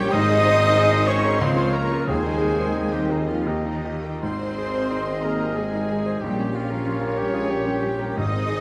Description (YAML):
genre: classical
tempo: 76-97 BPM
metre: 3/4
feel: rubato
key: Ab major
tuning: A4 = 440 Hz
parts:
  - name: clear baby grand piano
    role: melody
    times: 0.0-8.6 s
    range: Db2 to Eb5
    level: -29 LUFS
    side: equal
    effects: none
  - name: rich studio violin section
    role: melody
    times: 0.0-8.6 s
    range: G4 to Db6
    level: -42 LUFS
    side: equal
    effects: none
  - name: clear studio violin section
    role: second line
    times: 0.0-8.6 s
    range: Eb5 to Eb6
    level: -40 LUFS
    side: equal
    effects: none
  - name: concert flute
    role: second line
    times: 0.0-8.6 s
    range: Eb5 to Eb6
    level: -34 LUFS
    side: equal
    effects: none
  - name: warm oboe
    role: second line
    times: 0.0-8.6 s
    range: Eb4 to Eb5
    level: -33 LUFS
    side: equal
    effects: none
  - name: rich studio viola section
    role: accompaniment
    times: 0.0-8.6 s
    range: Eb4 to Eb5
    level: -33 LUFS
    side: equal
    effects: none
  - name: mellow French horn section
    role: sustained chords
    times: 0.0-8.6 s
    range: Db4 to C5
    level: -34 LUFS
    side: equal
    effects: none
  - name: mellow trombone section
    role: sustained chords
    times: 0.0-8.6 s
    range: Ab2 to Db4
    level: -36 LUFS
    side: equal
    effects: none
  - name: clear trumpet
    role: stabs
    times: 0.0-8.6 s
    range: C5 to Eb5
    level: -35 LUFS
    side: equal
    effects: none
  - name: clear studio double bass section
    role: bass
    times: 0.0-8.6 s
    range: Ab1 to Eb2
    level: -32 LUFS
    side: equal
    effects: none
  - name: clear tuba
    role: bass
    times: 0.0-8.6 s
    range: Ab1 to Eb2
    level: -34 LUFS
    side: equal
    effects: none
  - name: rich studio cello section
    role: bass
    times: 0.0-8.6 s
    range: Eb3 to Eb4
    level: -32 LUFS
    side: equal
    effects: none
  - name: clear clarinet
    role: second line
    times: 0.1-8.6 s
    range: Eb4 to Eb5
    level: -34 LUFS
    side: equal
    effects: none
  - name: timpani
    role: percussion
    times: 2.1-3.1, 8.2-8.6 s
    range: Ab2 to Eb3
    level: -33 LUFS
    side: equal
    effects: none
room: wet concert hall reverb, RT60 2.2 s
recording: faint mains hum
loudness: -22 LUFS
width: mono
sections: 0.0-8.6 A section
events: none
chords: 0.1 Ab; 1.4 Bbm/Db; 2.1 Ab/Eb; 3.5 Eb; 4.2 Ab; 6.2 Gdim/Bb